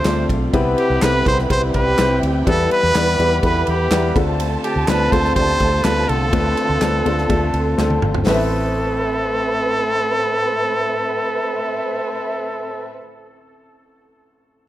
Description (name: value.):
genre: piano-driven pop.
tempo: 124 BPM.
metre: 4/4.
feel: straight.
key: A minor.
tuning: A4 = 440 Hz.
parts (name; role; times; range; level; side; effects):
clear trumpet; melody; 0.0-12.9 s; G4 to C5; -21 LUFS; right 1 dB; none.
dark symphonic violin section; second line; 0.0-12.9 s; C4 to D6; -26 LUFS; right 2 dB; none.
warm upright piano; accompaniment; 0.0-14.6 s; A1 to D5; -21 LUFS; left 2 dB; none.
dark studio string section; sustained chords; 0.0-12.9 s; A2 to B4; -29 LUFS; right 1 dB; none.
vintage muted fingered electric bass; bass; 0.1-13.0 s; G1 to E2; -22 LUFS; equal; none.
natural country drum kit; drums; 0.1-8.4 s; handclaps, hi-hat, kick drum, ride cymbal, snare drum, toms; -23 LUFS; equal; none.
group handclap; percussion; 1.0-8.5 s; none; -33 LUFS; right 6 dB; none.
room: light reverb.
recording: none.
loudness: -16 LUFS.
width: side -14 dB against mid.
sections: 0.0-8.3 A section; 8.3-12.1 B section.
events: drum fill 7.8-8.3.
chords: 0.0 Dm7; 0.5 Cmaj7; 2.5 Em; 4.2 Dm7; 8.3 Amadd9.